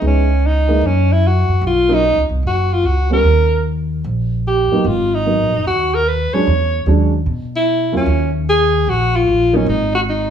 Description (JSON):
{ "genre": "jazz, small-group swing and bop", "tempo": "149 BPM", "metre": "4/4", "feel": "swing 66% on 8ths", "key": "Eb minor", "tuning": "A4 = 439 Hz", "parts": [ { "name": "clear alto saxophone", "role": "melody", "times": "0.0-10.3 s", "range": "Db4 to Db5", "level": "-16 LUFS", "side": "equal", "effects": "plate reverb" }, { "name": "dark upright piano", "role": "accompaniment", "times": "0.0-9.7 s", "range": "Fb3 to F4", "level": "-19 LUFS", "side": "right 2 dB", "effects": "none" }, { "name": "upright bass", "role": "bass", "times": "0.0-10.3 s", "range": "F#1 to B2", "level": "-17 LUFS", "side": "equal", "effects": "none" } ], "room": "light reverb", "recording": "small room ambience", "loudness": "-13 LUFS", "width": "side -8 dB against mid", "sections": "0.0-10.3 A section", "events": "none", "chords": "0.0 Dbm7; 0.8 Gb5; 1.6 Bmaj7sus2; 3.2 Eb; 4.9 Abm9; 6.5 E13; 8.1 Ebsus2; 9.7 Ab5" }